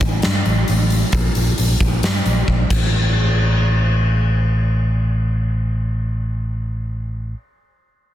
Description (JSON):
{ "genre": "hard rock", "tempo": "133 BPM", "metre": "4/4", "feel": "straight", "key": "unclear", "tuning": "A4 = 440 Hz", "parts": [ { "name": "fingered electric bass", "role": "bass", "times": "0.0-7.3 s", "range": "A1 to G2", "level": "-17 LUFS", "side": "equal", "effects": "none" }, { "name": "huge arena drum kit", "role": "drums", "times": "0.0-2.8 s", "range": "crash cymbal, hi-hat, kick drum, snare drum", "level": "-20 LUFS", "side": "equal", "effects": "none" } ], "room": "little or no reverb", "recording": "dense, heavily limited modern master", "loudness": "-16 LUFS", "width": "side -12 dB against mid", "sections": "0.0-2.9 A section; 2.9-6.5 B section", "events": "drum fill 2.5-2.9", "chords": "none", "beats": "0.23 0.68 | 1.13 1.58 2.03 2.48 | 2.93 3.38 3.83 4.28 | 4.73 5.18 5.63 6.08" }